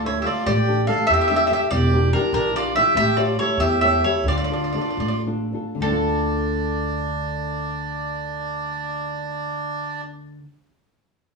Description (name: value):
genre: italian folk, Italian serenade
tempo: 68-98 BPM (dotted quarters)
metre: 6/8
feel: rubato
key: D harmonic minor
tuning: A4 = 442 Hz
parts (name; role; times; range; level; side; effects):
- mandolin; melody; 0.0-10.5 s; A4 to F5; -21 LUFS; equal; none
- accordion; second line; 0.0-10.0 s; D4 to A4; -26 LUFS; right 3 dB; none
- nylon-string guitar; accompaniment; 0.0-10.5 s; D3 to C#5; -26 LUFS; left 2 dB; none
- upright bass; bass; 0.0-10.4 s; E1 to E2; -26 LUFS; equal; none
room: wet studio reverb, RT60 0.7 s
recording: band playing live in one room, small room ambience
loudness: -19 LUFS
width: side -3 dB against mid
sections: 0.5-5.8 A section; 5.8-9.3 B section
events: slowing down 3.0-5.8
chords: 0.5 A7sus4; 1.7 Em7b5; 3.0 A7; 4.3 Dm